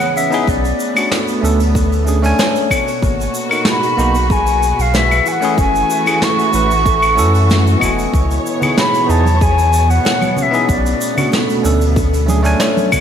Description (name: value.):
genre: sunset chillout.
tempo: 94 BPM.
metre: 4/4.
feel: straight.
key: unclear.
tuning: A4 = 440 Hz.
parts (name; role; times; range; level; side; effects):
mellow wooden flute; melody; 0.0-11.3 s; D5 to C#6; -18 LUFS; left 1 dB; ping-pong delay, shimmer reverb.
muted studio string section; sustained chords; 0.0-13.0 s; B2 to D#5; -22 LUFS; right 1 dB; shimmer reverb.
vintage brush drum kit; drums; 0.0-13.0 s; claves, hi-hat, shaker, snare drum; -20 LUFS; equal; gated reverb.
buzzing kalimba; arpeggios; 0.2-13.0 s; A#3 to C#5; -23 LUFS; left 3 dB; ping-pong delay, shimmer reverb.
barky tine electric piano; accompaniment; 0.3-12.9 s; A3 to G#5; -20 LUFS; moving between left 5 dB and right 5 dB; auto-pan, ping-pong delay, shimmer reverb.
warm sub bass; bass; 0.5-12.6 s; E1 to F#2; -15 LUFS; equal; none.
electronic kick drum; drums; 0.5-13.0 s; none; -18 LUFS; equal; none.
congas; percussion; 8.6-13.0 s; none; -23 LUFS; right 4 dB; none.
room: moderate lush hall reverb, RT60 2.2 s.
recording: bright 1980s-style digital production.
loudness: -12 LUFS.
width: side -8 dB against mid.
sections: 0.0-13.0 A section.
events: none.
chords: 0.5 Bm9; 2.7 G#m9; 5.3 F#m9; 8.1 C#m9; 10.7 Bm9.